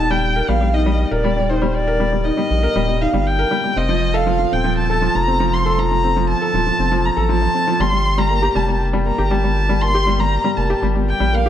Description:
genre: piano and strings electronica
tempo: 119 BPM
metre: 4/4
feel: straight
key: G minor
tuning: A4 = 440 Hz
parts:
  - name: dark violin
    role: melody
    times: 0.0-11.5 s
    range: C5 to C6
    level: -20 LUFS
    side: equal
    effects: none
  - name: felt-muted upright piano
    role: riff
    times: 0.0-11.5 s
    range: F3 to Bb4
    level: -19 LUFS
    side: left 1 dB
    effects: none
  - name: round analog bass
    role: bass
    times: 0.0-11.5 s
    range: Eb1 to Bb1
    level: -20 LUFS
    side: equal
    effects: none
room: moderate recital hall reverb, RT60 1.4 s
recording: dark, warm production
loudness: -15 LUFS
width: side -10 dB against mid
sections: 0.0-11.5 A section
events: none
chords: 0.0 Eb; 3.8 F; 7.8 Gmadd9

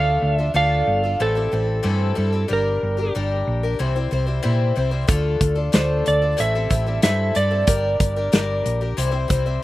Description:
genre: folk rock and heartland rock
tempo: 92 BPM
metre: 4/4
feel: straight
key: D minor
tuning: A4 = 440 Hz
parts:
  - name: electric slide guitar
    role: melody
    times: 0.0-8.6 s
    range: A4 to F5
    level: -22 LUFS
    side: right 2 dB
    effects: slapback echo
  - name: picked twelve-string acoustic guitar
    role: accompaniment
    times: 0.0-9.6 s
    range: A2 to C5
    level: -25 LUFS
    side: left 4 dB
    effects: slapback echo
  - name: hollow-body short-scale fingered electric bass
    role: bass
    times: 0.0-9.6 s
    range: G1 to Bb2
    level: -22 LUFS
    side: right 1 dB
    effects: none
  - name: natural country drum kit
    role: drums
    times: 5.1-9.5 s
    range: hi-hat, kick drum, snare drum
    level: -19 LUFS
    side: equal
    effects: none
room: little or no reverb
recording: recorded outdoors, with no room sound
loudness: -18 LUFS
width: side -16 dB against mid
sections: 0.0-9.6 A section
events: none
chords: 0.0 Dm; 1.2 Am7; 2.5 Gm; 3.8 C; 5.1 Dm; 6.4 Am7; 7.7 Gm; 9.0 C

